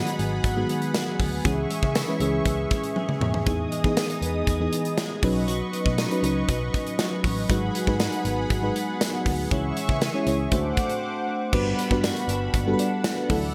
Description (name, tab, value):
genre	1980s-style pop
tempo	119 BPM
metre	4/4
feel	straight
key	C# minor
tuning	A4 = 438 Hz
part	FM electric piano with tremolo	accompaniment	0.0-13.5 s	D#3 to F#5	-30 LUFS	equal	none
part	lush unison pad	sustained chords	0.0-13.5 s	G3 to E6	-34 LUFS	equal	chorus
part	twelve-string electric guitar	riff	0.0-13.5 s	E3 to F#4	-35 LUFS	equal	analog chorus, digital delay
part	modern studio drum kit	drums	0.1-13.4 s	crash cymbal, hi-hat, kick drum, snare drum, tambourine, toms	-29 LUFS	equal	gated reverb
part	vintage muted picked electric bass	bass	0.2-13.5 s	G1 to E3	-32 LUFS	equal	none
room	moderate plate reverb, RT60 1.2 s, studio reverb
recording	bright 1980s-style digital production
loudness	-25 LUFS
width	mono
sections	0.0-11.5 A section; 11.5-13.5 A section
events	drum fill 3.0-3.5; break 11.0-11.5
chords	0.0 G#m7; 1.4 C#m; 3.5 Emaj7; 5.2 Badd9; 7.5 G#m7; 9.5 C#m; 10.5 D7; 11.5 Gmaj7